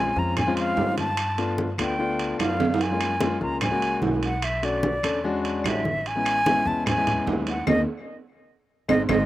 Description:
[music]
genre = Afro-Cuban jazz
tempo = 148 BPM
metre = 4/4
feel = straight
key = unclear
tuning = A4 = 438 Hz
[part]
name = bright concert flute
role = melody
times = 0.0-9.2 s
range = D5 to Bb5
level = -26 LUFS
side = equal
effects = slapback echo
[part]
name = warm grand piano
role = accompaniment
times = 0.0-9.2 s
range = Ab3 to A4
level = -28 LUFS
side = left 3 dB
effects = slapback echo
[part]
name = upright bass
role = bass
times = 0.0-9.2 s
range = Ab1 to G2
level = -31 LUFS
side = equal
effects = none
[part]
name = congas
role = percussion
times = 0.2-9.2 s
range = none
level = -29 LUFS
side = equal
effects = none
[part]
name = claves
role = percussion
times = 0.4-9.2 s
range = none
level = -35 LUFS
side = left 7 dB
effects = slapback echo
[part]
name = timbales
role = percussion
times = 0.4-9.2 s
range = none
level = -28 LUFS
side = right 5 dB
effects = none
[sound]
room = little or no reverb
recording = recorded outdoors, with no room sound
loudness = -22 LUFS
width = side -14 dB against mid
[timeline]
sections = 0.0-9.3 A section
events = drum fill 2.6, 8.7-9.3; band accent 7.7-9.3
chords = 0.0 Bbm9 (rootless); 1.2 G9; 2.8 Gbmaj7; 4.4 Cbm7; 5.2 E13; 6.1 Amaj9; 7.7 Eb5; 8.5 Ab

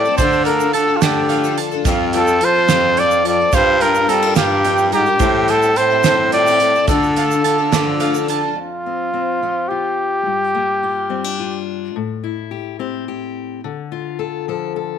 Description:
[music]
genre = indie folk with a building arrangement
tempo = 72 BPM (dotted quarters)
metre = 6/8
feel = straight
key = F major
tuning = A4 = 440 Hz
[part]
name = warm trumpet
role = melody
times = 0.0-11.7 s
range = F4 to D5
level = -16 LUFS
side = equal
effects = none
[part]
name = fingerpicked steel-string acoustic guitar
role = accompaniment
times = 0.0-15.0 s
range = F2 to A4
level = -24 LUFS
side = left 11 dB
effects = none
[part]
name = picked twelve-string acoustic guitar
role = accompaniment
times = 0.0-8.6 s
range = A2 to Bb4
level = -25 LUFS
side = left 12 dB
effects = ensemble chorus
[part]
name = bowl-back mandolin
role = arpeggios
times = 0.0-8.6 s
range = C5 to Bb5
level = -23 LUFS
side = right 13 dB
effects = slapback echo
[part]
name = clear baritone saxophone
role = bass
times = 0.0-8.4 s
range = F2 to G3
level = -20 LUFS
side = right 1 dB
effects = none
[part]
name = tube shaker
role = percussion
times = 0.1-8.4 s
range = none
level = -33 LUFS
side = right 18 dB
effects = none
[part]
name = loose indie drum kit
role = drums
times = 0.2-8.4 s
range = hi-hat, kick drum, snare drum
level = -21 LUFS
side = right 4 dB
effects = none
[sound]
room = light reverb, small room ambience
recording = 1960s-style stereo with parts hard left and right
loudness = -14 LUFS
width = side -8 dB against mid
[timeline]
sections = 0.0-8.6 A section; 8.6-15.0 B section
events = none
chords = 0.2 Dm; 1.9 Fadd9; 3.5 Gm7; 5.2 Am7; 6.9 Dm; 8.6 Fsus2; 10.2 Gm7; 11.9 Am7; 13.6 Dm

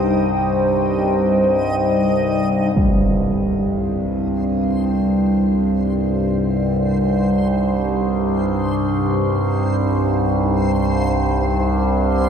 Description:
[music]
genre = dark ambient drone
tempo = free time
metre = none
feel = none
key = unclear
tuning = A4 = 441 Hz
[part]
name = dark analog pad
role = sustained chords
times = 0.0-12.3 s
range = G3 to G5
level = -22 LUFS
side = equal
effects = chorus, phaser
[part]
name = overtone-sweeping drone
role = drone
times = 0.0-12.3 s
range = C2 to G2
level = -19 LUFS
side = equal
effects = chorus, built-in reverb
[part]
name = backwards swelling texture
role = texture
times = 0.0-12.3 s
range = C5 to Eb5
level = -31 LUFS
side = left 1 dB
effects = built-in reverb
[part]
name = quartz singing bowl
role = arpeggios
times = 2.8-9.0 s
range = G3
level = -22 LUFS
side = right 1 dB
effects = tape echo
[part]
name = impact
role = percussion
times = 2.8-3.0 s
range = none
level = -24 LUFS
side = equal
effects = low-pass filter on sfx
[sound]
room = wet cathedral reverb, RT60 5.0 s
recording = in a vast, echoing space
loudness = -16 LUFS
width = side -7 dB against mid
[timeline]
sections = 0.0-2.8 A section; 2.8-12.3 B section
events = fade-in on synth texture 2.8-12.3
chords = 0.0 Cm

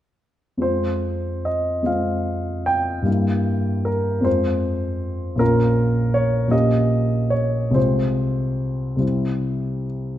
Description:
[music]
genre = classical, romantic character piece for solo piano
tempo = 51 BPM (dotted quarters)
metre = 6/8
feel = uneven beats, rubato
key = F minor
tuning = A4 = 443 Hz
[part]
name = warm grand piano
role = solo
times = 0.6-10.2 s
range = Bb1 to G5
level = -19 LUFS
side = equal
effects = none
[sound]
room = moderate recital hall reverb, RT60 1.4 s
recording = none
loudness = -19 LUFS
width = side -12 dB against mid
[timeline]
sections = 0.6-10.2 A section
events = none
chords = 0.6 Fm; 3.1 Edim/G; 4.3 Fm; 5.4 Bbm; 6.5 Gdim/Bb; 7.8 Fm/C; 9.0 C

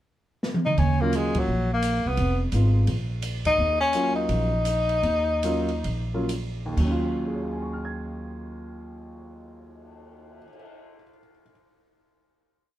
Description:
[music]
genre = jazz, small-group swing and bop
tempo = 120-172 BPM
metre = 4/4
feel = swing 64% on 8ths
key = Eb minor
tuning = A4 = 440 Hz
[part]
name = open jazz drum kit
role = drums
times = 0.4-10.7 s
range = crash cymbal, cymbal swell, hi-hat, kick drum, ride cymbal, snare drum, toms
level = -32 LUFS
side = right 2 dB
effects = none
[part]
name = warm tenor saxophone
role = melody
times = 0.7-6.3 s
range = Gb3 to Eb4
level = -24 LUFS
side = left 2 dB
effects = none
[part]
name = upright bass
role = bass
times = 0.8-10.4 s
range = F1 to Eb2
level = -26 LUFS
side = equal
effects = none
[part]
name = warm upright piano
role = accompaniment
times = 1.0-11.5 s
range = Eb2 to Ab6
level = -30 LUFS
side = equal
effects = none
[sound]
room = light reverb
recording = band playing live in one room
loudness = -22 LUFS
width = side -13 dB against mid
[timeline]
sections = 0.0-0.8 pickup bar; 0.8-6.8 A section; 6.8-10.8 final chord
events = drum fill 0.4-0.8; band accent 1.3, 3.4; slowing down 3.6-6.8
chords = 0.0 N.C.; 0.8 Ebm7; 2.2 Fm7b5; 2.9 Bb; 3.6 Ebm7

